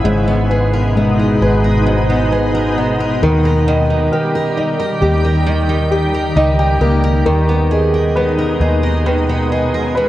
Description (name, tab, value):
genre	pop ballad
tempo	66 BPM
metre	4/4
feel	straight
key	G# harmonic minor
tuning	A4 = 441 Hz
part	warm concert grand piano	accompaniment	0.0-10.1 s	D#3 to G5	-18 LUFS	left 2 dB	none
part	picked steel-string acoustic guitar	arpeggios	0.0-10.1 s	G#2 to B4	-20 LUFS	right 3 dB	none
part	vintage muted fingered electric bass	bass	0.0-10.1 s	G#1 to D#2	-16 LUFS	equal	none
part	shimmering ambient pad	sustained chords	0.1-10.1 s	B2 to G4	-19 LUFS	equal	chorus, built-in reverb
room	moderate lush hall reverb, RT60 2.4 s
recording	worn, warbling old tape, cassette tape, warbly pitch drift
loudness	-12 LUFS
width	side -14 dB against mid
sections	0.0-10.1 A section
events	grand piano fill 5.9-7.3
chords	0.0 G#madd9; 3.2 D#; 7.3 G#madd9/D#